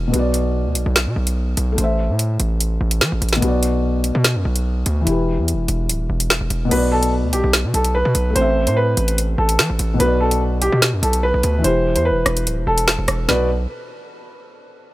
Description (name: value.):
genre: hip hop, drill.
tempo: 146 BPM.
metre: 4/4.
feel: half-time.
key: B phrygian.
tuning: A4 = 440 Hz.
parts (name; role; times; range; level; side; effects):
felt-muted upright piano; accompaniment; 0.0-13.5 s; B2 to E5; -23 LUFS; left 2 dB; low-pass filter.
hard-hitting 808-style bass; bass; 0.0-13.7 s; D1 to E3; -19 LUFS; equal; none.
drill drum kit; drums; 0.1-13.4 s; crash cymbal, hi-hat, rim click, snare drum; -19 LUFS; equal; none.
clear upright piano; melody; 6.7-13.5 s; G4 to C5; -20 LUFS; right 1 dB; low-pass filter, digital delay.
room: studio ambience.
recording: none.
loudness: -16 LUFS.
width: side -17 dB against mid.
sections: 0.0-6.7 A section; 6.7-13.3 B section; 13.3-14.9 C section.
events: none.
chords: 0.1 Bm; 1.8 Am; 3.4 Bm; 5.1 Em; 6.7 Bm; 8.4 Am; 10.0 Bm; 11.6 Em; 13.3 N.C..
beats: | 0.14 0.55 0.96 1.37 | 1.78 2.19 2.60 3.01 | 3.42 3.83 4.25 4.66 | 5.07 5.48 5.89 6.30 | 6.71 7.12 7.53 7.95 | 8.36 8.77 9.18 9.59 | 10.00 10.41 10.82 11.23 | 11.64 12.05 12.46 12.88 | 13.29.